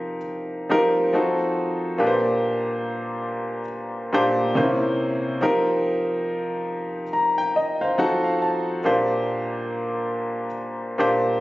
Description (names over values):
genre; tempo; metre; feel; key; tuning
R&B; 70 BPM; 4/4; swing 58% on 16ths; unclear; A4 = 440 Hz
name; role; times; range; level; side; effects
clear grand piano; solo; 0.0-11.4 s; Bb2 to Bb5; -21 LUFS; equal; none
room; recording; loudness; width
light reverb, small room ambience; recorded on a phone in the room, studio reverb, compression, nothing above 7.9 kHz; -21 LUFS; side -18 dB against mid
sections
0.0-11.4 A section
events
grand piano fill 7.1-8.8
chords
0.0 F9sus4; 1.1 F7b9; 2.0 Bb6; 4.6 C7b9; 5.4 F9sus4; 8.0 F7b9; 8.8 Bb6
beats
0.27 1.13 | 1.99 2.84 3.70 4.56 | 5.42 6.27 7.13 7.99 | 8.84 9.70 10.56